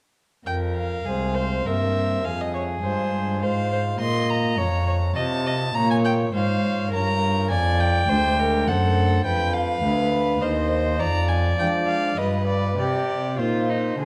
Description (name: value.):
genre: classical, baroque-style sonata movement with continuo.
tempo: 103 BPM.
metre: 3/4.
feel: straight.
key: F minor.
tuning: A4 = 440 Hz.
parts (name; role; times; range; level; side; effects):
warm violin; melody; 0.5-14.1 s; C5 to C6; -29 LUFS; equal; none.
warm violin; second line; 0.5-14.1 s; Eb4 to Eb5; -30 LUFS; equal; none.
pipe organ, flutes; accompaniment; 0.5-14.1 s; C2 to Eb5; -30 LUFS; equal; none.
dark cello; bass; 0.5-14.1 s; C2 to F3; -26 LUFS; equal; none.
room: wet recital hall reverb, RT60 1.5 s.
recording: dark, warm production.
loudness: -23 LUFS.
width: mono.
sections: 0.5-14.1 A section.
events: none.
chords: 0.5 Fm; 1.7 C7/G; 2.2 Fm; 4.0 Bbm; 5.2 F7/C; 5.8 Bbm; 7.5 Ddim/F; 8.7 D7/F#; 9.2 Dm6; 10.4 Cm/Eb; 11.0 Ddim/F; 12.2 G7; 12.8 Cm.